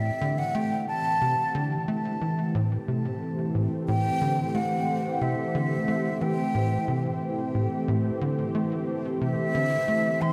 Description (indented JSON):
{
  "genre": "ambient, sequencer-driven space music",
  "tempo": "90 BPM",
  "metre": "4/4",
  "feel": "straight",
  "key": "A minor",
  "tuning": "A4 = 435 Hz",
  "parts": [
    { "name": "breathy concert flute", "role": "melody", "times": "0.0-10.3 s", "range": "E5 to C6", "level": "-32 LUFS", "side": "equal", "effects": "delay" },
    { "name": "lush unison pad", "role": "sustained chords", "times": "0.0-10.3 s", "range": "E3 to D5", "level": "-32 LUFS", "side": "equal", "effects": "chorus" },
    { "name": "tight sequencer bass", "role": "riff", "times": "0.0-10.3 s", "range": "A2 to A3", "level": "-31 LUFS", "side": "equal", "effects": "subtle chorus, delay" },
    { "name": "wind-like tuned noise texture", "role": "texture", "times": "0.4-10.3 s", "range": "none", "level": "barely audible", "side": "none", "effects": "none" }
  ],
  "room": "wet cathedral reverb, RT60 5.0 s",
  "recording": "in a vast, echoing space",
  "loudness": "-27 LUFS",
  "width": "mono",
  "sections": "0.0-10.3 A section",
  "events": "none",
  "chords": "0.0 Am7"
}